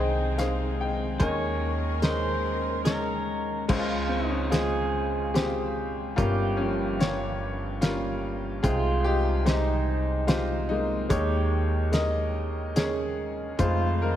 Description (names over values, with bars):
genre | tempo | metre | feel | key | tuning
acoustic folk-pop ballad | 73 BPM | 3/4 | straight | Ab major | A4 = 439 Hz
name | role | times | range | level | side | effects
clear upright piano | melody | 0.0-14.2 s | F1 to Ab5 | -28 LUFS | left 2 dB | none
pedal steel guitar | second line | 0.0-14.2 s | Eb4 to Db5 | -32 LUFS | right 2 dB | none
warm studio string section | sustained chords | 0.0-3.7, 13.6-14.2 s | Eb3 to Bb4 | -37 LUFS | equal | none
upright bass | bass | 0.0-14.2 s | G1 to F2 | -29 LUFS | equal | none
cloth-damped thuddy drum kit | drums | 0.4-13.8 s | crash cymbal, hi-hat, kick drum, rim click, snare drum | -29 LUFS | equal | none
room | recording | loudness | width
light reverb | none | -24 LUFS | side -11 dB against mid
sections
0.0-3.7 A section; 3.7-14.2 A section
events
none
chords
0.0 Ab/C; 1.2 Eb7sus4; 3.7 Dbmaj7; 6.2 Gm7b5; 8.6 Abmaj7/C; 11.1 Eb7sus4; 13.6 Fm7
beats
0.38 | 1.20 2.02 2.86 | 3.69 4.52 5.35 | 6.17 7.00 7.81 | 8.63 9.45 10.27 | 11.10 11.93 12.76 | 13.59